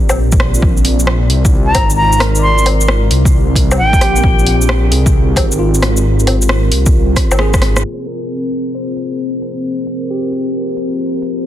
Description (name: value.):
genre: future garage.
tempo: 133 BPM.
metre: 4/4.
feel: swing 66% on 16ths.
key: unclear.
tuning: A4 = 440 Hz.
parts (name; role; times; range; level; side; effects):
tine electric piano; accompaniment; 0.0-11.5 s; F4 to D5; -24 LUFS; left 3 dB; medium stereo tremolo, sidechain pumping, low-pass filter, tape echo.
deep dark ambient pad; sustained chords; 0.0-11.5 s; C4 to D5; -20 LUFS; equal; chorus, built-in reverb, vintage 12-bit sampler grit, sidechain pumping.
swelling detuned saw bass; bass; 0.1-7.8 s; Ab1 to C2; -13 LUFS; equal; sidechain pumping.
deep house drum kit; drums; 0.1-11.3 s; hi-hat, rim click, shaker, woodblock; -18 LUFS; equal; overdrive, low-pass filter on perc, studio reverb, low-pass filter on snare, low-pass filter on hats.
electronic kick drum; drums; 0.3-7.6 s; none; -13 LUFS; equal; overdrive, studio reverb.
bright concert flute; melody; 1.7-4.2 s; G5 to C6; -16 LUFS; equal; ping-pong delay.
room: little or no reverb.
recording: dense, heavily limited modern master, vinyl crackle, low-pass filter.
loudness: -11 LUFS.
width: side -12 dB against mid.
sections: 0.0-7.8 A section; 7.8-11.5 B section.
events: drum fill 7.2-7.8; band accent 7.7; filter sweep on tine electric piano 7.8-11.5; filter sweep 7.8-11.5.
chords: 0.0 C5; 0.6 Bb7; 7.8 C5.